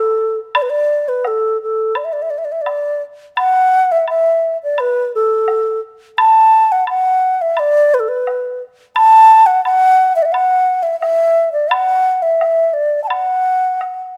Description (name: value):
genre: chinese traditional, Chinese chamber ensemble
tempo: 86 BPM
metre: 4/4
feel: straight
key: unclear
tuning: A4 = 440 Hz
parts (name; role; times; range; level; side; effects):
- xiao; melody; 0.0-14.1 s; A4 to A5; -14 LUFS; equal; none
- woodblock; percussion; 0.5-14.0 s; none; -22 LUFS; equal; none
room: light reverb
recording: close, detailed microphones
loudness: -14 LUFS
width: mono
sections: 0.0-3.4 A section; 3.4-14.2 B section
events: none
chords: none